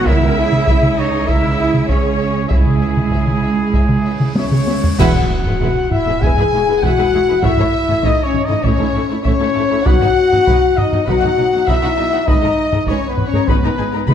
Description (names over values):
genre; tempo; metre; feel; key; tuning
cinematic, epic orchestral film score; 99 BPM; 4/4; straight; unclear; A4 = 440 Hz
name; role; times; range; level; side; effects
warm symphonic violin section; second line; 0.0-14.1 s; D#4 to B5; -28 LUFS; left 4 dB; none
rich symphonic viola section; accompaniment; 0.0-14.1 s; F#3 to A#4; -25 LUFS; right 2 dB; none
warm trumpet section; stabs; 0.0-14.1 s; G#4 to G#5; -21 LUFS; equal; none
rich symphonic cello section; bass; 0.0-14.1 s; E2 to E4; -23 LUFS; right 4 dB; none
warm symphonic violin section; melody; 0.1-14.1 s; B4 to G#5; -26 LUFS; left 6 dB; none
dark French horn section; sustained chords; 0.1-14.1 s; B3 to E5; -18 LUFS; left 6 dB; none
rich symphonic double bass section; bass; 0.1-14.1 s; E1 to C#2; -22 LUFS; right 4 dB; none
taiko ensemble; drums; 0.1-14.1 s; none; -17 LUFS; equal; none
cymbal swell and impact; sound effects; 4.2-7.4 s; none; -30 LUFS; equal; none
clash cymbals and concert bass drum; percussion; 5.0-6.2 s; none; -23 LUFS; equal; none
room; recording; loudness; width
moderate scoring stage reverb, RT60 1.8 s; none; -13 LUFS; side -9 dB against mid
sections
0.0-5.0 A section; 5.0-14.1 B section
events
cymbal swell 4.2-5.0; drum fill 4.4-5.0; band accent 5.0-5.6; impact 5.0-7.4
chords
0.1 C#m; 5.0 Eadd9; 7.4 A; 9.9 B; 12.3 G#madd9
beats
| 0.07 0.67 1.28 1.89 | 2.50 3.12 3.74 4.37 | 5.00 5.61 6.21 6.82 | 7.43 8.03 8.64 9.25 | 9.86 10.47 11.08 11.68 | 12.28 12.88 13.48 14.08